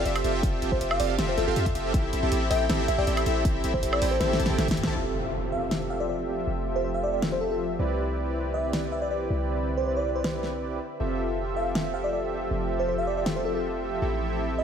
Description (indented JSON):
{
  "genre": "future bass",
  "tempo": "159 BPM",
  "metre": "4/4",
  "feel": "half-time",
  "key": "F lydian",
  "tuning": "A4 = 440 Hz",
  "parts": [
    { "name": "bell-like FM electric piano", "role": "melody", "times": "0.0-14.6 s", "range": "A4 to F5", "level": "-31 LUFS", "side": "equal", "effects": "chorus, vintage 12-bit sampler grit, sidechain pumping, tape echo" },
    { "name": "big bright polysynth", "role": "riff", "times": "0.0-14.6 s", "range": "C4 to A5", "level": "-28 LUFS", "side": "right 1 dB", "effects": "tremolo, sidechain pumping, ping-pong delay" },
    { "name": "warm 808-style bass", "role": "bass", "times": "0.0-14.6 s", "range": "F1 to A2", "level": "-31 LUFS", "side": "equal", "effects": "sidechain pumping" },
    { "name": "pop drum kit", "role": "drums", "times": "0.1-13.3 s", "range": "hi-hat, snare drum, woodblock", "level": "-30 LUFS", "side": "equal", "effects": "none" },
    { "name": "electronic kick drum", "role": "drums", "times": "0.4-4.8 s", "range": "none", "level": "-27 LUFS", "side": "equal", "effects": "none" },
    { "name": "ethereal airy pad", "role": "sustained chords", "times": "5.9-14.6 s", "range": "D3 to E5", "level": "-38 LUFS", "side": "right 1 dB", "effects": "ensemble chorus, built-in reverb, sidechain pumping" },
    { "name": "impact", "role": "sound effects", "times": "5.0-6.5 s", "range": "none", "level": "-37 LUFS", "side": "equal", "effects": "none" }
  ],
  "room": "light reverb, digital ambience",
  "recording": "none",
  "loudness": "-24 LUFS",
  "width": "side -8 dB against mid",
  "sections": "0.0-5.0 A section; 5.0-14.6 B section",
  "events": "drop 0.0-5.0; drum fill 4.2-5.0; band accent 4.8; impact 5.0-6.5; filter sweep on analog polysynth 5.0-14.6",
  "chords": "0.0 Fmaj9; 1.9 Am7; 5.0 Fmaj9; 7.8 Cmaj9; 11.0 Fmaj9; 14.0 Am7",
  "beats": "0.06 | 0.43 0.81 1.19 1.56 | 1.94 2.32 2.70 3.07 | 3.45 3.83 4.21 4.58 | 4.96 5.34 5.71 6.09 | 6.47 6.85 7.22 7.60 | 7.98 8.36 8.73 9.11 | 9.49 9.87 10.24 10.62 | 11.00 11.38 11.75 12.13 | 12.51 12.88 13.26 13.64 | 14.02 14.39"
}